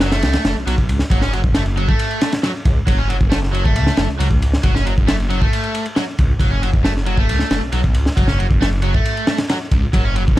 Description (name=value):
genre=breakbeat, breaks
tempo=136 BPM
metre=4/4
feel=straight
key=F# minor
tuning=A4 = 440 Hz
part: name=crunchy overdriven guitar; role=riff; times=0.0-10.2 s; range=F#3 to C#4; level=-23 LUFS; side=equal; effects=vintage 12-bit sampler grit, tape echo
part: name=phased detuned saw bass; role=bass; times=0.0-10.4 s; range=F#1 to C#2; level=-19 LUFS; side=equal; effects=phaser
part: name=crunchy breakbeat drum kit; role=drums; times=0.0-10.4 s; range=kick drum, ride cymbal, snare drum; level=-17 LUFS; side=equal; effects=none
room=small room ambience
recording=vinyl crackle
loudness=-15 LUFS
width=side -15 dB against mid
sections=0.0-10.4 A section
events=none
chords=0.0 F#m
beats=0.23 0.67 | 1.11 1.55 1.99 2.43 | 2.88 3.32 3.76 4.20 | 4.64 5.08 5.52 5.96 | 6.41 6.85 7.29 7.73 | 8.17 8.61 9.05 9.49 | 9.93 10.38